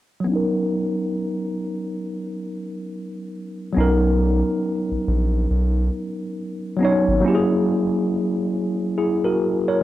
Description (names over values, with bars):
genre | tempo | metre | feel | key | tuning
hip hop | 69 BPM | 4/4 | swing 61% on 16ths | B major | A4 = 441 Hz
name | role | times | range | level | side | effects
mellow tine electric piano | accompaniment | 0.2-9.8 s | F#3 to C#5 | -21 LUFS | equal | medium stereo tremolo, low-pass filter, plate reverb
soft dub sub bass | bass | 3.8-7.2 s | G#1 to B1 | -20 LUFS | equal | transformer saturation
room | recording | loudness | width
moderate studio reverb, RT60 0.7 s | dry, gritty hardware recording, cassette tape | -19 LUFS | side -14 dB against mid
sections
0.3-3.8 A section; 3.8-9.8 B section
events
filter sweep on tine electric piano 0.3-3.8; tine electric piano fill 9.4-9.8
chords
0.3 Bmaj9; 7.2 F#7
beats
| 0.28 1.15 2.02 2.88 | 3.75 4.62 5.49 6.36 | 7.23 8.10 8.97